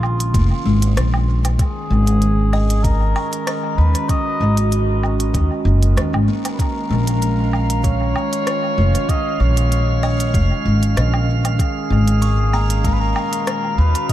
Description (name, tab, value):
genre	ambient dub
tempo	96 BPM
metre	4/4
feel	swing 54% on 16ths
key	unclear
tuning	A4 = 440 Hz
part	trumpet with cup mute	melody	0.0-14.1 s	E#4 to D#5	-25 LUFS	left 2 dB	dub echo
part	warbly tape-like pad	sustained chords	0.0-14.1 s	A#2 to F#4	-25 LUFS	right 3 dB	chorus, built-in reverb
part	upright bass	bass	0.0-13.9 s	E#1 to D#2	-16 LUFS	equal	tube saturation
part	organic electronic drum kit	drums	0.0-14.1 s	hi-hat, rim click, woodblock	-28 LUFS	right 1 dB	dub echo
part	buzzing kalimba	arpeggios	0.3-14.1 s	G#3 to C#6	-29 LUFS	left 4 dB	dub echo
part	electronic kick drum	drums	0.3-14.1 s	none	-19 LUFS	equal	none
part	drifting glass-harmonics texture	texture	6.9-14.1 s	E#5	-29 LUFS	right 9 dB	chorus, built-in reverb
room	small room ambience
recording	none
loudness	-15 LUFS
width	side -13 dB against mid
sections	0.0-14.1 A section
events	none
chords	0.0 A#m7; 1.6 G#sus2; 6.6 A#m7; 11.6 G#sus2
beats	0.34 0.97 | 1.59 2.22 2.84 3.47 | 4.09 4.72 5.34 5.97 | 6.59 7.22 7.84 8.47 | 9.09 9.72 10.34 10.97 | 11.59 12.22 12.84 13.47 | 14.09